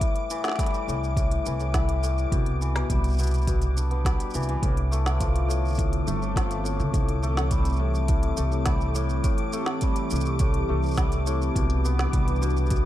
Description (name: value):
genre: folktronica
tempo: 104 BPM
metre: 4/4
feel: straight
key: unclear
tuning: A4 = 440 Hz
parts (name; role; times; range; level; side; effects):
- hammered dulcimer; arpeggios; 0.0-12.9 s; A2 to D4; -30 LUFS; left 4 dB; ping-pong delay
- electronic kick drum; drums; 0.0-12.8 s; none; -25 LUFS; right 1 dB; small room ambience
- organic electronic drum kit; drums; 0.0-12.8 s; hi-hat, shaker, snare drum; -34 LUFS; right 1 dB; small room ambience
- flickering grainy texture; texture; 0.0-12.9 s; D6; -38 LUFS; equal; built-in reverb
- upright bass; bass; 0.9-12.9 s; G1 to D2; -25 LUFS; equal; tube saturation
- warbly tape-like pad; sustained chords; 5.2-12.9 s; D3 to B4; -32 LUFS; equal; chorus, built-in reverb, phaser
room: light reverb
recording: dark, warm production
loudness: -22 LUFS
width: side -13 dB against mid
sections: 0.0-12.9 A section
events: none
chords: 0.0 Am7; 2.3 Em7/C; 4.6 F6/C; 6.9 Am7/C